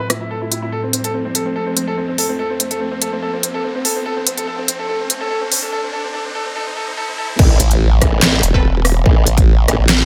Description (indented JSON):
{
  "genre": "heavy wobble dubstep",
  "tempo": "144 BPM",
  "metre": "4/4",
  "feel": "half-time",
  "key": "A minor",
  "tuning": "A4 = 441 Hz",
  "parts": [
    { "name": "clear baby grand piano", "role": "melody", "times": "0.0-7.4 s", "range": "C4 to A4", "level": "-24 LUFS", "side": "equal", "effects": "low-pass filter, digital delay" },
    { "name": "evolving wavetable pad", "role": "sustained chords", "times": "0.0-10.1 s", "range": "F2 to E4", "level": "-32 LUFS", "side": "equal", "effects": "ensemble chorus, built-in reverb, sidechain pumping" },
    { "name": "riser and impact", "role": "sound effects", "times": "0.0-9.1 s", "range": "none", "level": "-29 LUFS", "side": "equal", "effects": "none" },
    { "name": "dubstep drum kit", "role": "drums", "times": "0.1-10.0 s", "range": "crash cymbal, handclaps, hi-hat, rim click, snare drum", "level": "-18 LUFS", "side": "equal", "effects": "none" },
    { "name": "formant-sweep wobble bass", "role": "bass", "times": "7.4-9.8 s", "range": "A1", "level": "-19 LUFS", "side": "equal", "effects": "chorus, overdrive" },
    { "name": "electronic kick drum", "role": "drums", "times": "7.4-9.5 s", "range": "none", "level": "-15 LUFS", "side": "equal", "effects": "none" },
    { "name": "formant-sweep wobble bass", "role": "bass", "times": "7.6-10.1 s", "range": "E1 to A1", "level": "-16 LUFS", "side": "equal", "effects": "chorus, overdrive" },
    { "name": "orchestra-hit-like synth stab", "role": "stabs", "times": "8.5-8.6 s", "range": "C4 to B4", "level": "-27 LUFS", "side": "equal", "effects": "built-in reverb, cassette tape, digital delay" }
  ],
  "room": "light reverb",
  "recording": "high-pass filter",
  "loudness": "-17 LUFS",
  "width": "mono",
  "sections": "0.0-7.4 A section; 7.4-10.1 B section",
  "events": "build-up 0.0-7.4; riser 0.0-7.4; filter sweep on ambient pad 0.0-7.4; filter sweep on grand piano 0.0-7.4; break 5.7-7.4; drop 7.4-10.1; impact 7.4-9.1",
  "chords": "0.0 Am; 0.7 F; 4.1 Dm/F; 7.4 Amadd9"
}